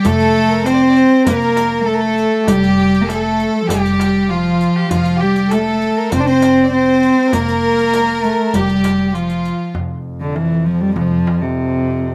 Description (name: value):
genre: Arabic maqam ensemble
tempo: 99 BPM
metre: 4/4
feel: straight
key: F maqam ajam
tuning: A4 = 438 Hz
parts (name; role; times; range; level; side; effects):
- dark cello; melody; 0.0-12.1 s; C3 to D4; -16 LUFS; equal; none
- clear studio violin section; second line; 0.0-9.8 s; F4 to D5; -25 LUFS; equal; slapback echo
- warm violin; second line; 0.0-9.7 s; F4 to D5; -24 LUFS; equal; slapback echo
- riq; percussion; 0.0-9.5 s; none; -31 LUFS; equal; slapback echo
- upright bass; bass; 0.1-11.2 s; F1; -27 LUFS; equal; none
- darbuka; percussion; 0.1-12.0 s; none; -29 LUFS; equal; none
- warm double bass; drone; 9.8-12.1 s; F2; -27 LUFS; equal; none
room: little or no reverb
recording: recorded outdoors, with no room sound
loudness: -15 LUFS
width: mono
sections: 0.0-9.8 A section; 9.8-12.1 B section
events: none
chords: none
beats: | 0.05 0.66 1.26 1.87 | 2.48 3.08 3.69 4.30 | 4.91 5.51 6.12 6.72 | 7.33 7.93 8.54 9.15 | 9.75 10.36 10.96 11.57